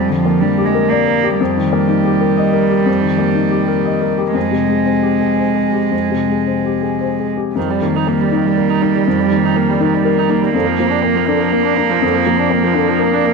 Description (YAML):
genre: neoclassical piano and strings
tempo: 121 BPM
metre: 3/4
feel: rubato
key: unclear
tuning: A4 = 440 Hz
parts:
  - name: warm cello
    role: second line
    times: 0.0-13.3 s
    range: F3 to Bb3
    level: -16 LUFS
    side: right 10 dB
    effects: none
  - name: warm baby grand piano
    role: accompaniment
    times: 0.0-13.3 s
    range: F2 to Eb5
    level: -16 LUFS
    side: left 9 dB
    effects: none
  - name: warm viola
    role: accompaniment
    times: 7.6-13.3 s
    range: D3 to Eb4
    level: -19 LUFS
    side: right 11 dB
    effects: none
room: moderate echo chamber reverb, RT60 2.1 s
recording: 1960s-style stereo with parts hard left and right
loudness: -13 LUFS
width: side -4 dB against mid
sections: 0.0-7.6 A section; 7.6-13.3 B section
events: none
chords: 0.0 Gm/F; 1.4 Eb/F; 4.4 Fmadd9; 7.6 Eb/F; 10.5 Bb/F